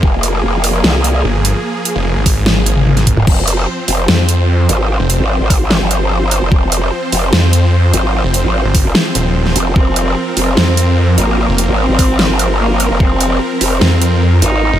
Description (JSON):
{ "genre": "heavy wobble dubstep", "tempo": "148 BPM", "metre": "4/4", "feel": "half-time", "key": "F minor", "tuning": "A4 = 440 Hz", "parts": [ { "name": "supersaw chords", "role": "sustained chords", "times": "0.0-14.8 s", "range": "F3 to C5", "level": "-19 LUFS", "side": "right 1 dB", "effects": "vintage 12-bit sampler grit, sidechain pumping" }, { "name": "growl bass", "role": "bass", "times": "0.0-14.7 s", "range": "Eb1 to C2", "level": "-14 LUFS", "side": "equal", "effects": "chorus, overdrive" }, { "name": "electronic kick drum", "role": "drums", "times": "0.0-13.1 s", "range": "none", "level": "-12 LUFS", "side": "equal", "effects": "overdrive" }, { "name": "dubstep drum kit", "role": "drums", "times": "0.2-14.5 s", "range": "crash cymbal, hi-hat, snare drum, toms", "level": "-15 LUFS", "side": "equal", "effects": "overdrive" }, { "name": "snarling distorted saw bass", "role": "bass", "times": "1.2-14.8 s", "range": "Eb1 to F2", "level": "-12 LUFS", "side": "equal", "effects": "overdrive" }, { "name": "rich cello", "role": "melody", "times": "9.8-14.8 s", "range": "Bb3 to Eb4", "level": "-18 LUFS", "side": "right 1 dB", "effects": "tape echo" } ], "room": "digital ambience", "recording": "none", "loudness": "-10 LUFS", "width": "side -11 dB against mid", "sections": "0.0-3.3 A section; 3.3-14.8 A section", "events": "drop 0.0-3.3, 3.3-14.8; drum fill 2.5-3.3", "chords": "0.0 F5" }